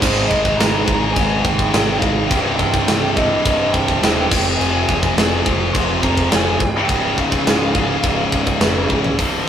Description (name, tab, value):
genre	heavy metal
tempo	105 BPM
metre	4/4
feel	straight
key	unclear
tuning	A4 = 440 Hz
part	dark smooth lead guitar	melody	0.0-8.9 s	C5 to C6	-23 LUFS	right 1 dB	overdrive, tape echo
part	bright studio string section	sustained chords	0.0-9.5 s	C3 to C5	-32 LUFS	right 1 dB	none
part	heavy high-gain guitar	riff	0.0-9.5 s	C2 to Ab3	-23 LUFS	right 6 dB	distortion
part	scooped high-gain guitar	riff	0.0-9.5 s	C2 to Ab3	-21 LUFS	left 5 dB	distortion
part	fuzz picked electric bass	bass	0.0-9.5 s	C1 to Ab1	-24 LUFS	equal	overdrive
part	tight metal drum kit	drums	0.0-9.3 s	china cymbal, crash cymbal, hi-hat, kick drum, snare drum, toms	-18 LUFS	equal	none
room	moderate studio reverb, RT60 0.5 s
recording	rough rehearsal-room recording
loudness	-14 LUFS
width	side -9 dB against mid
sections	0.0-9.2 A section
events	drum fill 8.9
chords	0.0 Ab; 2.3 Cm; 4.3 Fm; 6.9 Db